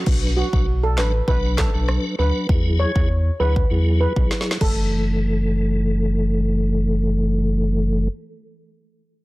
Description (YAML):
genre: dancehall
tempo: 99 BPM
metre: 4/4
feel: straight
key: F# minor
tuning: A4 = 439 Hz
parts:
  - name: tonewheel organ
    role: accompaniment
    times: 0.0-8.1 s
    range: E3 to B4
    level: -24 LUFS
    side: left 1 dB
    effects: chorus vibrato, fast rotary speaker, sidechain pumping, low-pass filter
  - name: sub bass with octave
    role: bass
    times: 0.1-8.1 s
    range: F#1 to E2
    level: -20 LUFS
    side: equal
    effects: none
  - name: afro-pop drum kit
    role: drums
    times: 0.1-4.8 s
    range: crash cymbal, handclaps, kick drum, rim click, snare drum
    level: -21 LUFS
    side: equal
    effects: none
  - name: steel pan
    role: melody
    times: 0.4-6.7 s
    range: F#4 to C#5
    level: -26 LUFS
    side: right 1 dB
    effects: low-pass filter, tape echo
room: little or no reverb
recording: dense, heavily limited modern master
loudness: -18 LUFS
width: side -20 dB against mid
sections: 0.1-4.9 A section; 4.9-7.3 B section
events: drum fill 4.3-4.9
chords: 0.1 Bm; 2.5 Eadd9; 4.6 F#m7